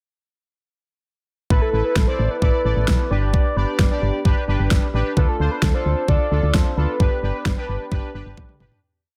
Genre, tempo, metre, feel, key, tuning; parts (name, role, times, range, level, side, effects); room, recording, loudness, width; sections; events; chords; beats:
synth-pop; 131 BPM; 4/4; straight; A4 = 440 Hz
soft octave-layered synth lead; melody; 1.5-8.4 s; A4 to D5; -28 LUFS; equal; chorus
analog synth brass; accompaniment; 1.5-8.8 s; D4 to D5; -29 LUFS; equal; chorus
solid FM bass; bass; 1.5-8.7 s; G1 to E2; -23 LUFS; equal
pop drum kit; drums; 1.5-8.8 s; kick drum, snare drum, toms; -21 LUFS; equal; overdrive
light reverb, digital ambience; dense, heavily limited modern master; -20 LUFS; mono
1.5-8.8 verse
fade-out 7.0-8.8; drum fill 8.4-8.8
1.5 Asus2; 3.1 G; 5.2 Dm; 7.0 G
| 1.50 1.96 2.42 2.88 | 3.34 3.79 4.25 4.71 | 5.17 5.63 6.08 6.54 | 7.00 7.46 7.92 8.37